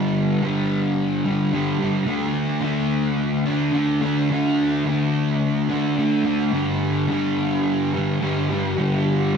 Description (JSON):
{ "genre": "rock", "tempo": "108 BPM", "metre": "4/4", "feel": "straight", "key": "unclear", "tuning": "A4 = 439 Hz", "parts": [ { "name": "fuzz guitar", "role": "solo", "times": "0.0-9.4 s", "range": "G2 to D4", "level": "-19 LUFS", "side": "equal", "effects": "distortion, lush chorus" } ], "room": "moderate lush hall reverb, RT60 3.0 s", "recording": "dark, warm production", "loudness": "-19 LUFS", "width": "side -6 dB against mid", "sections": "0.0-9.4 A section", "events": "none", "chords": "0.0 G5; 2.1 D5; 6.5 G5", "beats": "0.40 0.96 1.52 | 2.08 2.63 3.19 3.75 | 4.30 4.86 5.42 5.98 | 6.54 7.10 7.65 8.21 | 8.77 9.33" }